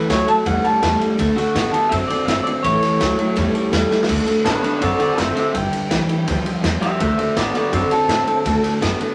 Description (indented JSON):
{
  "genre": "rockabilly",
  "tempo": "165 BPM",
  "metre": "4/4",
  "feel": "straight",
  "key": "D major",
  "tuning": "A4 = 438 Hz",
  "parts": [
    { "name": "electric guitar through a small old amp", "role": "melody", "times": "0.0-9.0 s", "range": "D4 to A5", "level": "-23 LUFS", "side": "equal", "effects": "none" },
    { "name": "picked steel-string acoustic guitar", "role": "accompaniment", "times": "0.0-9.1 s", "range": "A2 to B4", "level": "-27 LUFS", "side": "equal", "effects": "none" },
    { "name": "electric guitar through a small old amp", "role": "riff", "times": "0.0-9.1 s", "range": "G2 to C4", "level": "-23 LUFS", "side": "equal", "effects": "none" },
    { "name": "upright bass", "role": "bass", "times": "0.1-9.0 s", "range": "F#1 to A2", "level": "-28 LUFS", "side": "equal", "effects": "none" },
    { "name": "raw garage drum kit", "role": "drums", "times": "0.1-9.1 s", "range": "crash cymbal, kick drum, ride cymbal, snare drum", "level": "-26 LUFS", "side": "equal", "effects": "none" }
  ],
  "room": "wet studio reverb, RT60 0.9 s",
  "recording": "none",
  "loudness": "-18 LUFS",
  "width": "mono",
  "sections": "0.0-4.1 A section; 4.1-9.1 B section",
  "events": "drum fill 3.9; clean electric guitar solo 4.1-9.1",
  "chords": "0.0 A; 1.2 D; 2.6 A; 4.1 D; 5.5 G; 7.0 D"
}